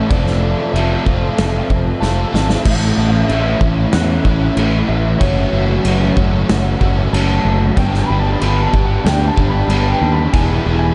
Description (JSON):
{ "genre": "rock, shoegaze and dream pop", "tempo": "94 BPM", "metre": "4/4", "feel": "straight", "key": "A major", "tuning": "A4 = 441 Hz", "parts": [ { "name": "electric guitar through a small old amp", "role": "melody", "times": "0.0-10.9 s", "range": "C#5 to B5", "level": "-26 LUFS", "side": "equal", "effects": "subtle chorus, diffuse ambient delay" }, { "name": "crunchy overdriven guitar", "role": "riff", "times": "0.0-10.9 s", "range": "A2 to A4", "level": "-20 LUFS", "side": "equal", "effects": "analog chorus" }, { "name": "growling fingered electric bass", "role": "bass", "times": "0.1-10.9 s", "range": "E1 to E2", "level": "-19 LUFS", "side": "equal", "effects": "overdrive" }, { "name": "loose indie drum kit", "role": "drums", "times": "0.1-10.5 s", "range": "crash cymbal, kick drum, snare drum", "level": "-21 LUFS", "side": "equal", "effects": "none" } ], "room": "moderate huge ambient reverb, RT60 7.3 s", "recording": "dreamy mix soaked in reverb, nothing above 10.6 kHz", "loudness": "-15 LUFS", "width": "mono", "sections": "0.0-2.7 A section; 2.7-10.9 B section", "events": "drum fill 2.0-2.7", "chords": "0.1 Fmaj7; 2.7 A; 5.2 F#m; 7.8 G; 10.3 E", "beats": "| 0.10 0.74 1.38 2.02 | 2.65 3.29 3.93 4.57 | 5.21 5.85 6.49 7.13 | 7.77 8.41 9.05 9.69 | 10.33" }